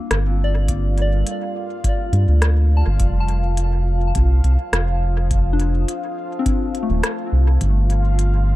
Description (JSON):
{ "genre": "ambient dub", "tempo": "104 BPM", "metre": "4/4", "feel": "swing 53% on 16ths", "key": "G minor", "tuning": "A4 = 440 Hz", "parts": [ { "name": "deep dark ambient pad", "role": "sustained chords", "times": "0.0-8.6 s", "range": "G3 to Eb6", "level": "-34 LUFS", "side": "right 3 dB", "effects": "chorus, built-in reverb" }, { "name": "soft synth bell", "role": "arpeggios", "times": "0.0-8.6 s", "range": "A3 to A5", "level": "-28 LUFS", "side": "left 5 dB", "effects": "chorus, phaser, dub echo" }, { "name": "bubbling stepped-filter texture", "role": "texture", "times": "0.0-8.6 s", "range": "F4 to F5", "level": "-30 LUFS", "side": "equal", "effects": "chorus, built-in reverb" }, { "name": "round analog bass", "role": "bass", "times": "0.1-8.6 s", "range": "Eb1 to G2", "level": "-16 LUFS", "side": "equal", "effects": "none" }, { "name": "organic electronic drum kit", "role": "drums", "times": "0.1-8.3 s", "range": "hi-hat, rim click", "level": "-26 LUFS", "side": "equal", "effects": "dub echo" }, { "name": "electronic kick drum", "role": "drums", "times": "0.7-7.7 s", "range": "none", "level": "-22 LUFS", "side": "equal", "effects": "none" } ], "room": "digital ambience", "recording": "dark, warm production", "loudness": "-16 LUFS", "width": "side -16 dB against mid", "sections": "0.0-8.6 A section", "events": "fade-in on ambient pad 0.0-8.6", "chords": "0.0 Gmadd9; 3.0 F7; 7.6 Gsus2" }